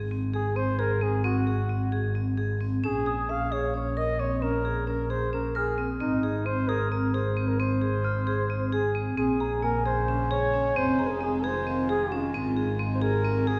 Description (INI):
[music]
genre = contemporary instrumental, chamber music in an uneven meter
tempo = 265 BPM (eighths)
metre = 7/8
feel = straight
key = Bb minor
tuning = A4 = 440 Hz
[part]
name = vibraphone with hard mallets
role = arpeggios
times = 0.0-13.6 s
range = Bb3 to Bb4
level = -32 LUFS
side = equal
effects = none
[part]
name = dark double bass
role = bass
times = 0.0-13.6 s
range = F1 to Bb1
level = -32 LUFS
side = equal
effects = none
[part]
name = mellow flugelhorn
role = melody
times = 0.3-13.6 s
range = Eb4 to F5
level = -32 LUFS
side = equal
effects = none
[part]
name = glockenspiel with rubber mallets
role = texture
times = 3.1-12.4 s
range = Ab5 to F6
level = -38 LUFS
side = equal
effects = none
[part]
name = evolving wavetable pad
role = sustained chords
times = 10.1-13.6 s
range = C3 to Gb4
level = -40 LUFS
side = equal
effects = phaser, built-in reverb
[sound]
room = wet scoring stage reverb, RT60 1.9 s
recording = recorded in a church or concert hall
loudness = -27 LUFS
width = mono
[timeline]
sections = 0.0-9.2 A section; 9.2-13.6 B section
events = none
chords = 0.0 Ab7; 2.8 Bbm7; 6.0 Ab; 9.2 Bbm9; 10.8 Fm7; 12.3 Ab7